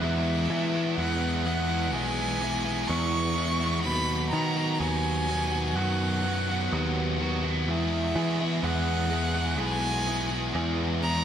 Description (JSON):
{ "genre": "post-rock", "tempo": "63 BPM", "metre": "4/4", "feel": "straight", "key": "unclear", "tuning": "A4 = 442 Hz", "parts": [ { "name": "dark violin", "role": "melody", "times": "0.0-11.2 s", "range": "E5 to C#6", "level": "-31 LUFS", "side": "right 1 dB", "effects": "tape echo" }, { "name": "biting overdriven guitar", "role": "riff", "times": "0.0-11.2 s", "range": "D#3 to G#4", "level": "-28 LUFS", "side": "equal", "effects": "none" }, { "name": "picked electric bass", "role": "bass", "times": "0.0-11.2 s", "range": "B1 to E3", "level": "-29 LUFS", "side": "equal", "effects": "none" } ], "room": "moderate lush hall reverb, RT60 1.9 s, small room reverb", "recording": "big arena sound", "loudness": "-25 LUFS", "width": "side -9 dB against mid", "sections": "0.0-11.2 A section", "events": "none", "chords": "0.0 E; 3.8 B/D#; 7.7 E" }